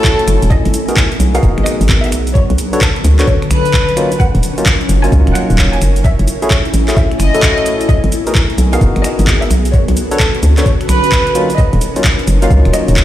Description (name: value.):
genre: UK garage, two-step garage.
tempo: 130 BPM.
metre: 4/4.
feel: swing 64% on 16ths.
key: unclear.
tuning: A4 = 440 Hz.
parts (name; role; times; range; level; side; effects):
warm chamber violin section; melody; 0.0-12.9 s; A4 to G#5; -20 LUFS; equal; ping-pong delay.
ethereal airy pad; sustained chords; 0.0-13.0 s; F#3 to G#5; -24 LUFS; left 1 dB; ensemble chorus, built-in reverb, phaser, sidechain pumping.
barky tine electric piano; stabs; 0.0-13.0 s; F#3 to C#5; -19 LUFS; left 1 dB; ping-pong delay.
electronic kick drum; drums; 0.0-13.0 s; none; -12 LUFS; equal; overdrive, small room ambience.
garage drum kit; drums; 0.0-13.0 s; finger snaps, handclaps, hi-hat, shaker; -19 LUFS; equal; overdrive, small room ambience.
ethereal airy pad; texture; 0.0-13.0 s; D3 to A5; -22 LUFS; left 1 dB; ensemble chorus, built-in reverb, sidechain pumping.
hollow knocking FM bass; bass; 0.3-13.0 s; D#1 to D2; -12 LUFS; equal; none.
room: light reverb, digital ambience.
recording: played on a big sound system in a bare room, stone room reverb.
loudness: -10 LUFS.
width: side -13 dB against mid.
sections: 0.0-13.0 A section.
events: none.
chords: 0.0 F#m7; 0.5 G#m7; 2.1 Bm7; 4.0 D#m7; 5.8 F#m7; 7.9 G#m7; 9.5 Bm7; 11.4 D#m7.